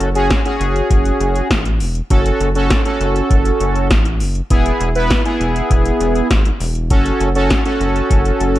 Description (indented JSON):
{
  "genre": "synth-pop",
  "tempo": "100 BPM",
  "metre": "4/4",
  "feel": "straight",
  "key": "F# minor",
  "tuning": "A4 = 439 Hz",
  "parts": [
    { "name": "analog synth brass", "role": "accompaniment", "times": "0.0-8.6 s", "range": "B3 to B4", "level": "-17 LUFS", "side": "right 1 dB", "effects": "chorus" },
    { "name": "rubbery square bass", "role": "bass", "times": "0.0-8.6 s", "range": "E1 to A1", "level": "-19 LUFS", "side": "equal", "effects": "none" },
    { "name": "electro analog drum machine", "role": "drums", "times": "0.0-8.6 s", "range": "hi-hat, kick drum, snare drum", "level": "-16 LUFS", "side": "equal", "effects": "gated reverb" }
  ],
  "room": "little or no reverb",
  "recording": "none",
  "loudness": "-13 LUFS",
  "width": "side -15 dB against mid",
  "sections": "0.0-8.6 A section",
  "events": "none",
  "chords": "0.0 F#m; 4.5 E; 6.9 F#m"
}